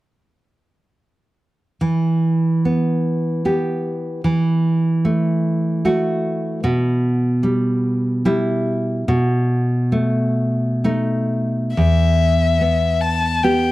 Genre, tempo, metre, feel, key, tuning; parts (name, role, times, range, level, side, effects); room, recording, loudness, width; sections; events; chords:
romantic duo for violin and classical guitar; 61-77 BPM; 3/4; rubato; E minor; A4 = 439 Hz
nylon-string guitar; accompaniment; 1.8-13.7 s; E2 to G4; -17 LUFS; right 1 dB
rich violin; melody; 11.8-13.7 s; E5 to A5; -19 LUFS; left 4 dB
light reverb, small room reverb; dry, close 1970s-style studio recording; -16 LUFS; side -17 dB against mid
1.8-11.8 A section; 11.8-13.7 B section
1.8 Em; 4.2 Esus24; 6.6 Em/B; 9.1 B7; 11.8 Em